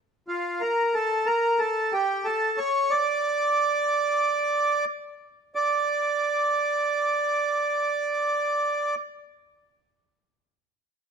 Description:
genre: arabic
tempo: 91 BPM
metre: 4/4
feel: straight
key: D maqam nahawand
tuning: A4 = 440 Hz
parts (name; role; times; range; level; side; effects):
- accordion; solo; 0.3-9.0 s; F4 to D5; -22 LUFS; right 2 dB; none
room: moderate recital hall reverb, RT60 1.4 s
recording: none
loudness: -22 LUFS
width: side -6 dB against mid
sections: 0.0-5.6 A section; 5.6-8.2 B section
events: none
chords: none

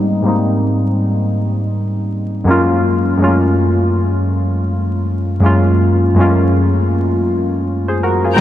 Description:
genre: hip hop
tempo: 81 BPM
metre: 4/4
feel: swing 61% on 16ths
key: unclear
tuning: A4 = 440 Hz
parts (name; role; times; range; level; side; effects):
- warm analog keys; accompaniment; 0.0-8.4 s; Gb2 to C5; -12 LUFS; equal; chorus, cassette tape, low-pass filter
room: moderate cathedral reverb, RT60 6.0 s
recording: dreamy mix soaked in reverb, vinyl crackle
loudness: -13 LUFS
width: side -12 dB against mid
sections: 0.0-8.4 A section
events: filter sweep on synth keys 0.0-8.4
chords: 0.0 Abmaj9; 2.5 Gbmaj9

